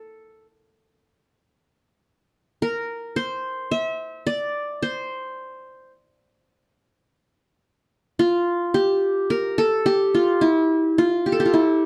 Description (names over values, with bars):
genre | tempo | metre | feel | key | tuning
turkish | 108 BPM (eighths) | 10/8 | straight | unclear | A4 = 440 Hz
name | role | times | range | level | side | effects
qanun | melody | 0.0-11.9 s | E4-30c to E5-30c | -22 LUFS | equal | none
room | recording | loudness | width
light reverb | dark, warm production | -22 LUFS | mono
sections
0.0-11.9 A section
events
none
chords
none